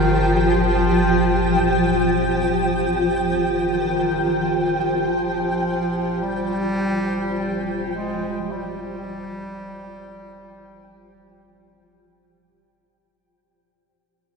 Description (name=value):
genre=dark ambient drone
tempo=free time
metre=none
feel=none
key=unclear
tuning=A4 = 440 Hz
part: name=warm bass clarinet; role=melody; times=0.0-12.6 s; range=Eb3 to Ab3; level=-26 LUFS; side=equal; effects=ping-pong delay
part: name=granular cloud pad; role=sustained chords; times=0.0-13.2 s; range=F3 to G5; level=-21 LUFS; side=equal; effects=built-in reverb
part: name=deep rumbling drone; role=drone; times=0.0-13.3 s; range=G1 to Bb2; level=-29 LUFS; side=left 1 dB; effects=built-in reverb
part: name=flickering grainy texture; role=texture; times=0.0-13.2 s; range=G5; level=-27 LUFS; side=equal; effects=built-in reverb
room=wet huge ambient reverb, RT60 7.7 s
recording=in a vast, echoing space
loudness=-18 LUFS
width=side -4 dB against mid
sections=0.0-13.2 A section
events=fade-out 0.9-13.2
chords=0.0 Fsus2/G